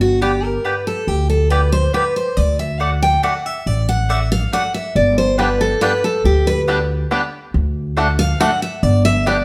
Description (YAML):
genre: bluegrass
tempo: 139 BPM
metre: 3/4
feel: straight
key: G major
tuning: A4 = 439 Hz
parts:
  - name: picked steel-string acoustic guitar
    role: accompaniment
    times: 0.0-9.4 s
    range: F#4 to G5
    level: -20 LUFS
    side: equal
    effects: none
  - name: upright bass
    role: bass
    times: 0.0-9.4 s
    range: G1 to D2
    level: -20 LUFS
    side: equal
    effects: none
  - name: mandolin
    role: stabs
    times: 0.2-9.4 s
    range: A3 to G5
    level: -25 LUFS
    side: equal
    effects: none
  - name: bluegrass banjo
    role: arpeggios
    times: 5.4-9.4 s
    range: G3 to D4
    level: -24 LUFS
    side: equal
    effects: none
room: moderate large studio reverb, RT60 1.0 s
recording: heard from further back in the room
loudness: -17 LUFS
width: mono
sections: 0.0-9.4 A section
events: steel-string acoustic guitar solo 0.0-9.4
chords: 0.0 G; 2.4 D; 5.0 G; 7.5 D; 8.8 G